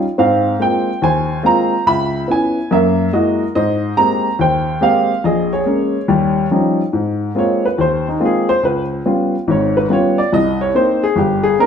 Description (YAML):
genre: solo jazz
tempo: 142 BPM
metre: 4/4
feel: swing 66% on 8ths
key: Ab major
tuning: A4 = 439 Hz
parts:
  - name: warm upright piano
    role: solo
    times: 0.0-11.7 s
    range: G1 to Cb6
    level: -13 LUFS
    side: equal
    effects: none
room: wet stone room reverb, RT60 1.1 s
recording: band playing live in one room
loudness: -13 LUFS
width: side -7 dB against mid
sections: 0.0-6.9 A section; 6.9-11.7 B section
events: upright piano solo 6.9-11.7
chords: 0.2 Ab69; 1.9 Dbm7; 2.7 Gb9; 3.5 Abmaj9; 5.2 Bbm7; 6.1 Eb9; 6.9 Ab69; 8.6 Db7#11; 10.3 Cm7